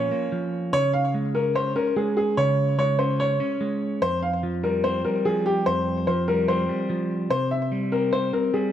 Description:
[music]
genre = hip hop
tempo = 146 BPM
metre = 4/4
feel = half-time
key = F minor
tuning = A4 = 441 Hz
[part]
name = warm upright piano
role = melody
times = 0.0-8.7 s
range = G4 to F5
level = -24 LUFS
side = left 1 dB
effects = ping-pong delay
[part]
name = semi-hollow electric guitar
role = accompaniment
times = 0.0-8.7 s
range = F2 to Db5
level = -25 LUFS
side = equal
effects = none
[sound]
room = light reverb, small room ambience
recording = dark, warm production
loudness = -21 LUFS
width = side -10 dB against mid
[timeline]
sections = 0.0-4.0 A section; 4.0-8.7 B section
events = none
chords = 0.0 Bbm; 0.7 Db5; 4.0 Fsus2; 7.3 C5

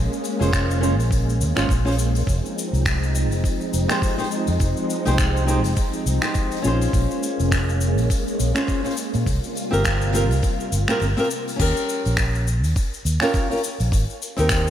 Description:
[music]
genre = sunset chillout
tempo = 103 BPM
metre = 4/4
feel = swing 58% on 16ths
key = F minor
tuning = A4 = 440 Hz
[part]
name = soft string machine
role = sustained chords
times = 0.0-11.6 s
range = C3 to F4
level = -27 LUFS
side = equal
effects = ensemble chorus
[part]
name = fingered electric bass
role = bass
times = 0.0-14.7 s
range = F1 to Bb2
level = -21 LUFS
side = equal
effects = tube saturation
[part]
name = soft brush drum kit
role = drums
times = 0.1-14.7 s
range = cabasa, crash cymbal, finger snaps, hi-hat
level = -28 LUFS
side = left 2 dB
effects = none
[part]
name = flamenco guitar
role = accompaniment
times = 0.4-14.7 s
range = C4 to C5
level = -25 LUFS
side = equal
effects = auto-pan, ping-pong delay
[part]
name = electronic kick drum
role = drums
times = 0.5-14.6 s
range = none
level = -22 LUFS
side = equal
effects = overdrive
[sound]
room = light reverb, small room reverb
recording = bright 1980s-style digital production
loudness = -19 LUFS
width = side -10 dB against mid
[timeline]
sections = 0.0-11.6 A section; 11.6-14.7 B section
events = kick drops out 11.0-11.6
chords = 0.0 Bbm7; 2.3 Fm7; 6.6 Bbm7; 9.3 C7sus4; 11.6 Eb7; 13.9 Abmaj7

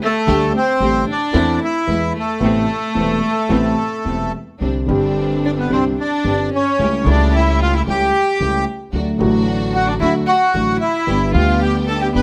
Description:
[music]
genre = tango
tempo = 111 BPM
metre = 4/4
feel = rubato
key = A minor, C major from 4.6 s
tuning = A4 = 441 Hz
[part]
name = bandoneon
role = melody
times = 0.0-12.2 s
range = A3 to B5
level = -21 LUFS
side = equal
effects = none
[part]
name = rich violin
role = second line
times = 0.0-12.2 s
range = A3 to B4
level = -26 LUFS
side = equal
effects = none
[part]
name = warm concert grand piano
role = accompaniment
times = 0.3-12.2 s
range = E1 to A4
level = -22 LUFS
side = equal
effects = none
[part]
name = rich symphonic string section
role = stabs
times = 0.3-12.2 s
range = G3 to G4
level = -27 LUFS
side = equal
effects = none
[part]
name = upright bass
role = bass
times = 0.3-12.2 s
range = E1 to E2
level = -24 LUFS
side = equal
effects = none
[sound]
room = light reverb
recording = none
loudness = -17 LUFS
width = mono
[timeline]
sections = 0.0-4.6 A section; 4.6-12.2 B section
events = none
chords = 0.3 Dsus4; 1.3 Am/E; 1.9 E; 2.4 Amadd9; 4.6 Csus2; 6.8 A7/C#; 8.9 D; 11.1 G

